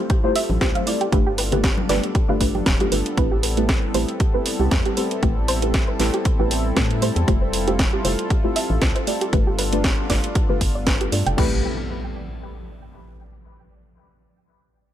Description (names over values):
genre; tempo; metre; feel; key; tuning
deep house; 117 BPM; 4/4; swing 55% on 16ths; A minor; A4 = 442 Hz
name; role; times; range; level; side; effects
warm analog pad; sustained chords; 0.0-11.6 s; G3 to A4; -28 LUFS; left 1 dB; chorus, sidechain pumping
deep mellow chord stab; stabs; 0.0-11.6 s; A3 to D5; -26 LUFS; left 1 dB; chorus, vintage 12-bit sampler grit, dub echo
soft round pluck; arpeggios; 0.1-11.6 s; G4 to G5; -29 LUFS; right 3 dB; chorus, sidechain pumping, ping-pong delay
electronic kick drum; drums; 0.1-11.5 s; none; -21 LUFS; equal; none
house drum kit; drums; 0.1-11.5 s; crash cymbal, hi-hat, snare drum; -26 LUFS; right 1 dB; overdrive
organ-like FM bass; bass; 0.5-11.6 s; D1 to A2; -24 LUFS; equal; sidechain pumping
congas; percussion; 0.5-2.9 s; none; -30 LUFS; left 2 dB; sidechain pumping on perc
impact; sound effects; 11.4-13.4 s; none; -32 LUFS; equal; none
room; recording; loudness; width
digital ambience; none; -18 LUFS; side -11 dB against mid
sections
0.0-11.4 A section; 11.4-13.4 B section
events
filter sweep on FM bass 0.0-11.4; filter sweep on synth stab 0.0-11.4; filter sweep on synth arpeggio sound 0.0-11.4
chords
0.0 Fmaj9; 1.1 G9; 3.2 Am9; 7.3 Fmaj9; 9.3 G9; 11.4 Am9